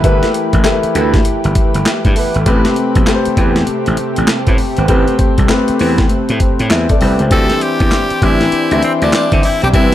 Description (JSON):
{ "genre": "R&B, new jack swing", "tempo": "99 BPM", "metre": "4/4", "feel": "swing 62% on 16ths", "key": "unclear", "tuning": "A4 = 440 Hz", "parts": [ { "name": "warm concert grand piano", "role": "accompaniment", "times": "0.0-9.9 s", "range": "E3 to E5", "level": "-17 LUFS", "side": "left 4 dB", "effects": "none" }, { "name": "lush unison pad", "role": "sustained chords", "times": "0.0-9.9 s", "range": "C3 to G5", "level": "-21 LUFS", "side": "right 1 dB", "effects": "chorus" }, { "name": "mellow horn section", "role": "stabs", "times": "0.0-9.9 s", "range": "G3 to B4", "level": "-21 LUFS", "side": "right 3 dB", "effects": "ping-pong delay" }, { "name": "gritty slap bass", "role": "bass", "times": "0.0-9.9 s", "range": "G1 to D3", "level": "-16 LUFS", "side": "equal", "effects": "overdrive" }, { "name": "breakbeat sampler-style drum kit", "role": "drums", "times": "0.0-9.9 s", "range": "handclaps, hi-hat, kick drum, snare drum", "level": "-14 LUFS", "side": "equal", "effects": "none" }, { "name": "raspy tenor saxophone", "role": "melody", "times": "7.3-9.9 s", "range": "C4 to A4", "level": "-16 LUFS", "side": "equal", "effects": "none" } ], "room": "small room ambience", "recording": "none", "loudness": "-11 LUFS", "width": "side -12 dB against mid", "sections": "0.0-7.3 A section; 7.3-9.9 B section", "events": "none", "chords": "0.0 G69; 2.5 Am9; 7.3 D9sus4" }